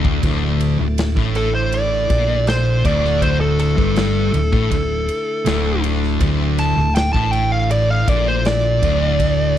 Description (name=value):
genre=stoner and doom metal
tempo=80 BPM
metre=4/4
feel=straight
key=unclear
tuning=A4 = 439 Hz
part: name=tonewheel organ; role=sustained chords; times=0.0-9.6 s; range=D3 to A4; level=-31 LUFS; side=equal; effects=slow rotary speaker
part: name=thick fuzz guitar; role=riff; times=0.0-9.6 s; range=D2 to Bb2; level=-22 LUFS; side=left 8 dB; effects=distortion
part: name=thick fuzz guitar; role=riff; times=0.0-9.6 s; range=D2 to Bb2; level=-23 LUFS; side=right 9 dB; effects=distortion
part: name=hollow-body short-scale fingered electric bass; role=bass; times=0.0-9.6 s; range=D1 to Bb1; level=-21 LUFS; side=equal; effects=overdrive
part: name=big rock drum kit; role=drums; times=0.0-9.4 s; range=kick drum, ride cymbal, snare drum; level=-23 LUFS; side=equal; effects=none
part: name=fuzz lead guitar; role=melody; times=1.4-9.6 s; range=A4 to A5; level=-20 LUFS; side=equal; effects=distortion, slapback echo
room=little or no reverb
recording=dry, close 1970s-style studio recording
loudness=-15 LUFS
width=side -11 dB against mid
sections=0.2-9.6 A section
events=drum fill 0.0; lead electric guitar solo 0.2-9.6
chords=0.2 D5